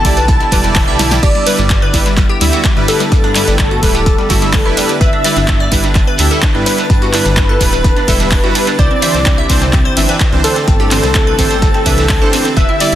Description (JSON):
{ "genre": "progressive house", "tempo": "127 BPM", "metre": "4/4", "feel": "straight", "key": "G major", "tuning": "A4 = 439 Hz", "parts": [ { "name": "wide unison lead", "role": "melody", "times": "0.0-13.0 s", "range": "A4 to A5", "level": "-18 LUFS", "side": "equal", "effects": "digital delay" }, { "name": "glassy wavetable pluck", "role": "second line", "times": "0.0-13.0 s", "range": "A4 to E5", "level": "-23 LUFS", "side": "left 3 dB", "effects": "none" }, { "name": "warm analog pad", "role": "sustained chords", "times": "0.0-13.0 s", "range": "D3 to G4", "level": "-23 LUFS", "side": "left 1 dB", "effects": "lush chorus, sidechain pumping" }, { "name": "glassy wavetable pluck", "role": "arpeggios", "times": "0.0-13.0 s", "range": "G3 to E5", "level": "-20 LUFS", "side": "equal", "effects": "chorus, phaser, sidechain pumping, dub echo" }, { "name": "soft supersaw", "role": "stabs", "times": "0.0-12.9 s", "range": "E3 to E5", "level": "-19 LUFS", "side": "right 4 dB", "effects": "cassette tape, sidechain pumping, dub echo" }, { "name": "dark detuned saw bass", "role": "bass", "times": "0.0-13.0 s", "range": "D1 to G2", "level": "-17 LUFS", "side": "equal", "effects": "sidechain pumping" }, { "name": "dusty soul sampler-style drum kit", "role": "drums", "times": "0.0-12.9 s", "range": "hi-hat, snare drum", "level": "-27 LUFS", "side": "equal", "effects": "none" }, { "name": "electronic kick drum", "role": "drums", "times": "0.0-12.7 s", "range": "none", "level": "-13 LUFS", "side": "equal", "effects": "none" }, { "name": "house drum kit", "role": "drums", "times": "0.0-13.0 s", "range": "crash cymbal, handclaps, hi-hat, ride cymbal, snare drum", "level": "-19 LUFS", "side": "equal", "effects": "none" }, { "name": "twinkling granular texture", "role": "texture", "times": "0.0-13.0 s", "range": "E6 to A6", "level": "-30 LUFS", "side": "equal", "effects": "none" }, { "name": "shekere", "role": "percussion", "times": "0.1-13.0 s", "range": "none", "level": "-23 LUFS", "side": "right 2 dB", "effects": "none" } ], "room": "little or no reverb", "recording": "dense, heavily limited modern master", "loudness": "-9 LUFS", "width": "side -12 dB against mid", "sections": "0.0-13.0 A section", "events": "drum fill 1.0", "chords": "0.0 Em7; 1.2 G6; 8.8 Cadd9" }